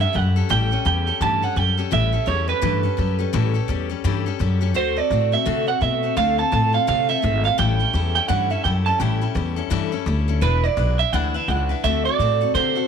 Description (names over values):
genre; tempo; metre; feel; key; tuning
rockabilly; 169 BPM; 4/4; swing 61% on 8ths; A mixolydian; A4 = 440 Hz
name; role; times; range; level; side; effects
electric guitar through a small old amp; melody; 0.0-12.9 s; B4 to A5; -22 LUFS; right 9 dB; tape echo
picked steel-string acoustic guitar; accompaniment; 0.0-12.9 s; A2 to B4; -25 LUFS; left 14 dB; none
upright bass; bass; 0.0-12.8 s; E1 to C3; -22 LUFS; left 1 dB; none
room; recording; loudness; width
studio ambience; 1960s-style stereo with parts hard left and right; -18 LUFS; side -7 dB against mid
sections
0.0-12.9 A section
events
none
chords
0.0 A7; 4.8 D7; 6.2 Dm7; 7.6 A7; 10.4 E7; 11.8 D7